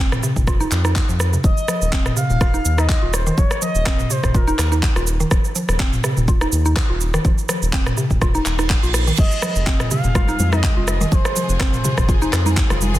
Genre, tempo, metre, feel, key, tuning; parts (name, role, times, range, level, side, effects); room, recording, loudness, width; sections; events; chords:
afro house; 124 BPM; 4/4; swing 55% on 16ths; A4 = 444 Hz
mallet-like synth pluck; arpeggios; 0.0-13.0 s; C3 to F4; -24 LUFS; equal; chorus, sidechain pumping, digital delay
round analog bass; bass; 0.0-13.0 s; Eb1 to F2; -21 LUFS; equal; sidechain pumping
house drum kit; drums; 0.1-13.0 s; crash cymbal, handclaps, rim click, shaker, toms; -22 LUFS; equal; soft clipping on snare
electronic kick drum; drums; 0.4-12.7 s; -18 LUFS; equal
expressive synth lead; melody; 1.4-5.1, 9.2-12.8 s; Bb4 to F5; -26 LUFS; equal; wide subtle chorus, digital delay
reverse cymbal; sound effects; 8.4-9.2 s; -28 LUFS; right 6 dB
clear symphonic string section; sustained chords; 9.2-13.0 s; C3 to Ab4; -30 LUFS; left 1 dB; sidechain pumping
congas; percussion; 9.4-13.0 s; -27 LUFS; left 2 dB
digital ambience; dense, heavily limited modern master; -16 LUFS; side -15 dB against mid
0.0-13.0 A section
reverse cymbal 8.4-9.2
0.0 F5; 1.4 Eb5; 9.2 Fm